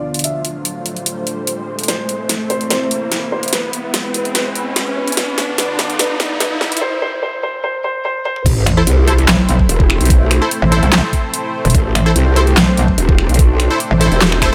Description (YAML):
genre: heavy wobble dubstep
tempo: 146 BPM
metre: 4/4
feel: half-time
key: A harmonic minor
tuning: A4 = 440 Hz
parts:
  - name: felt-muted upright piano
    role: melody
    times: 0.0-8.4 s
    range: B4 to E5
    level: -24 LUFS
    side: equal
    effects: dub echo
  - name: lush unison pad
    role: sustained chords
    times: 0.0-14.5 s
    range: D3 to D5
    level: -26 LUFS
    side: equal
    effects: chorus, phaser, sidechain pumping
  - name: riser and sub drop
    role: sound effects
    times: 0.0-10.1 s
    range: none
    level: -26 LUFS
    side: equal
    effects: none
  - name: dubstep drum kit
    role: drums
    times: 0.1-14.5 s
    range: crash cymbal, finger snaps, handclaps, hi-hat, snare drum, toms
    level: -20 LUFS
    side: equal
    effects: overdrive, high-pass filter on hats, high-pass filter on snare, high-pass filter on toms, high-pass filter on cymbals, high-pass filter on room
  - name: growl bass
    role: bass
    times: 8.5-14.5 s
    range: E1 to C2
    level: -16 LUFS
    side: equal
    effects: chorus, overdrive
  - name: electronic kick drum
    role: drums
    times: 8.5-14.5 s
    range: none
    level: -16 LUFS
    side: equal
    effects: overdrive
  - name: metallic wobble bass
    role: bass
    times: 8.7-14.1 s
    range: E1 to C2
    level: -15 LUFS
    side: equal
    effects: chorus, overdrive
  - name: supersaw stab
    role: stabs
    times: 8.8-14.5 s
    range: E4 to C5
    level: -22 LUFS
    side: equal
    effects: dub echo
room: light reverb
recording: high-pass filter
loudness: -15 LUFS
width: mono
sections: 0.0-8.5 A section; 8.5-14.5 B section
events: build-up 0.0-8.5; riser 0.0-6.8; filter sweep on analog synth pad 0.0-8.5; drum fill 1.9-6.8, 8.3; break 6.8-8.5; drop 8.5-14.5; impact 8.5-10.1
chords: 0.2 Dm7; 1.9 Am; 3.5 E; 5.2 Bdim/D; 6.8 N.C.; 8.5 Am